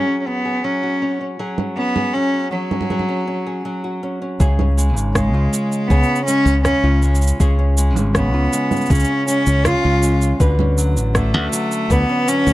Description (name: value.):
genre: folktronica.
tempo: 80 BPM.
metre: 4/4.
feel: straight.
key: unclear.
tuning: A4 = 439 Hz.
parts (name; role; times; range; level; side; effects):
bright cello; melody; 0.0-12.5 s; F#3 to E#4; -20 LUFS; equal; tape echo.
nylon-string guitar; arpeggios; 0.0-12.5 s; C#3 to B4; -23 LUFS; equal; none.
electronic congas, shaker and rim click; drums; 1.6-12.5 s; none; -23 LUFS; right 2 dB; none.
modern bright fingered electric bass; bass; 4.4-12.5 s; G#1 to D2; -16 LUFS; equal; none.
electronic kick drum; drums; 4.4-12.0 s; none; -19 LUFS; equal; none.
room: little or no reverb.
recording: dry, close 1970s-style studio recording, low-pass filter.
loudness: -15 LUFS.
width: side -16 dB against mid.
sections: 0.0-4.4 A section; 4.4-12.5 B section.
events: filter sweep 0.0-4.4.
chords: 0.0 F#sus2; 4.4 C#; 10.4 Bmadd9.